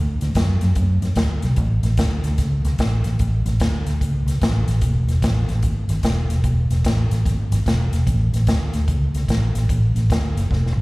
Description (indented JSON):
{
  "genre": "electric blues shuffle",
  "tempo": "148 BPM",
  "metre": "4/4",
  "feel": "swing 65% on 8ths",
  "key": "A major",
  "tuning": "A4 = 440 Hz",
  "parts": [
    { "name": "vintage muted fingered electric bass", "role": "bass", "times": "0.0-10.8 s", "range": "E1 to F#2", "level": "-19 LUFS", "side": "equal", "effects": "none" },
    { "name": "swinging big-band drum kit", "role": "drums", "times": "0.2-10.8 s", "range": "hi-hat, kick drum, snare drum", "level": "-22 LUFS", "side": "equal", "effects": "none" }
  ],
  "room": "little or no reverb",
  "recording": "live gig heard through the venue's PA, club reverb",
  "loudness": "-17 LUFS",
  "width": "side -23 dB against mid",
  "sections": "0.0-10.8 A section",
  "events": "drum fill 10.5-10.8",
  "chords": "none",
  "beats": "0.35 0.76 1.16 | 1.57 1.97 2.38 2.79 | 3.19 3.60 4.00 4.41 | 4.82 5.22 5.63 6.03 | 6.44 6.85 7.25 7.66 | 8.06 8.47 8.88 9.28 | 9.69 10.09 10.50"
}